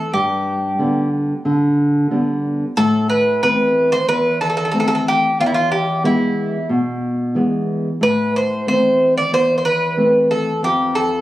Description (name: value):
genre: greek folk, Greek bouzouki band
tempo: 92 BPM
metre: 4/4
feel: straight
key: A minor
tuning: A4 = 435 Hz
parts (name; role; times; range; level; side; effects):
- Greek bouzouki; melody; 0.0-11.2 s; E4 to D5; -16 LUFS; right 1 dB; none
- nylon-string guitar; accompaniment; 0.1-11.2 s; E2 to C4; -18 LUFS; left 1 dB; none
room: light reverb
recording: recorded on a phone in the room, club reverb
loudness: -15 LUFS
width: side -15 dB against mid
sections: 0.0-11.2 A section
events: none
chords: 0.1 G; 2.8 Am; 5.4 E; 8.0 Am; 10.6 F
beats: | 0.14 0.79 1.45 2.11 | 2.77 3.42 4.08 4.74 | 5.39 6.05 6.70 7.36 | 8.01 8.67 9.32 9.97 | 10.62